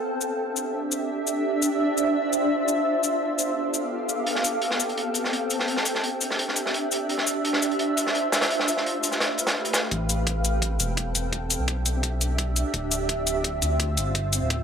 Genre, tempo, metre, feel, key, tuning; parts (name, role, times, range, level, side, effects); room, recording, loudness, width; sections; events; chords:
liquid drum and bass; 170 BPM; 4/4; straight; A minor; A4 = 440 Hz
shimmering ambient pad; sustained chords; 0.0-14.6 s; A3 to F5; -25 LUFS; right 1 dB; chorus, built-in reverb, sidechain pumping
electronic cabasa and hi-hat; drums; 0.2-14.6 s; -27 LUFS; left 4 dB
crunchy breakbeat drum kit; drums; 4.3-9.8 s; hi-hat, snare drum; -26 LUFS; equal; high-pass filter on hats, high-pass filter on snare, high-pass filter on room
smooth synth bass; bass; 9.9-14.6 s; D1 to D2; -26 LUFS; equal
electronic kick drum; drums; 9.9-14.6 s; -31 LUFS; equal; high-pass filter on kick, high-pass filter on room
wet digital room reverb, RT60 0.9 s; -22 LUFS; side -7 dB against mid
0.0-9.9 A section; 9.9-14.6 B section
build-up 9.9-14.6
0.0 Em7; 1.4 Dm9; 2.9 G9; 4.3 Am7; 5.5 Em7; 7.1 Dm9; 8.5 G9; 9.9 Am7; 11.2 Em7; 12.7 Dm9